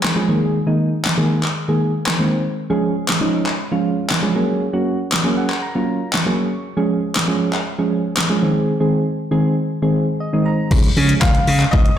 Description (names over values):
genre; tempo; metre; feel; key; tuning
dance-pop; 118 BPM; 4/4; straight; Db major; A4 = 442 Hz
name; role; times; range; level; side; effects
pop drum kit; drums; 0.0-12.0 s; crash cymbal, handclaps, hi-hat, kick drum, snare drum; -19 LUFS; left 1 dB; overdrive
soft electric-piano-like synth keys; accompaniment; 0.2-11.4 s; Eb3 to Db6; -18 LUFS; right 1 dB; chorus, sidechain pumping
slap bass; bass; 10.7-11.9 s; Db2 to Db3; -16 LUFS; equal; sidechain pumping
bright baby grand piano; melody; 11.2-12.0 s; Eb5 to F5; -21 LUFS; left 1 dB; none
room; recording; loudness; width
moderate digital room reverb, RT60 1.1 s; played on a big sound system in a bare room, large studio reverb; -16 LUFS; side -10 dB against mid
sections
0.0-10.7 A section; 10.7-12.0 B section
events
synth keys fill 5.1-6.6, 9.9-10.7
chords
0.3 Absus2; 2.6 Db; 4.4 Gbadd9; 6.6 Db/F; 8.4 Ab; 10.7 Db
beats
0.03 | 0.54 1.05 1.56 2.07 | 2.57 3.08 3.59 4.10 | 4.61 5.12 5.62 6.13 | 6.64 7.15 7.66 8.17 | 8.68 9.18 9.69 10.20 | 10.71 11.22 11.73